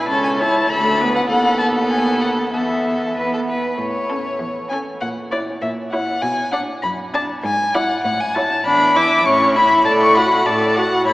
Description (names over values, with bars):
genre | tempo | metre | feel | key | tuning
quick classical-period movement for string quartet | 99 BPM | 2/4 | straight | A major | A4 = 439 Hz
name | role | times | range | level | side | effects
rich violin | melody | 0.0-11.1 s | C#5 to D6 | -18 LUFS | left 1 dB | none
clear violin | second line | 0.0-11.1 s | A4 to F#5 | -24 LUFS | equal | none
rich viola | accompaniment | 0.0-11.1 s | A3 to A4 | -21 LUFS | right 1 dB | none
clear cello | bass | 0.0-11.1 s | C#2 to B2 | -26 LUFS | right 1 dB | none
room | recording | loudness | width
wet cathedral reverb, RT60 6.5 s | recorded in a church or concert hall, small speaker sound | -15 LUFS | side -18 dB against mid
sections
0.0-3.8 A section; 3.8-11.1 B section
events
none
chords
0.1 A/C#; 0.7 Bm7/D; 1.3 B7/D#; 2.5 Esus4; 3.8 A; 5.0 F#7/A#; 6.2 Bm; 7.5 E7/G#; 8.1 A; 8.7 E5; 9.3 A; 9.9 D/A